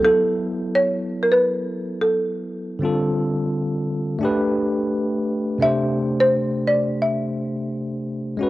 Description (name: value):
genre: hip hop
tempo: 86 BPM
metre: 4/4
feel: swing 65% on 16ths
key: unclear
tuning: A4 = 440 Hz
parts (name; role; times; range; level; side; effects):
- folk marimba with medium hard mallets; melody; 0.0-8.0 s; A4 to E5; -19 LUFS; equal; cassette tape
- bell-like tine electric piano; accompaniment; 0.0-8.5 s; C3 to C5; -22 LUFS; equal; medium stereo tremolo, cassette tape
room: moderate spring reverb, RT60 2.3 s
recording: home recording on cassette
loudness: -19 LUFS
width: side -17 dB against mid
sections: 0.0-8.5 A section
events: none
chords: 0.0 B5; 2.8 Dm7; 4.2 Gadd9; 5.6 Cadd9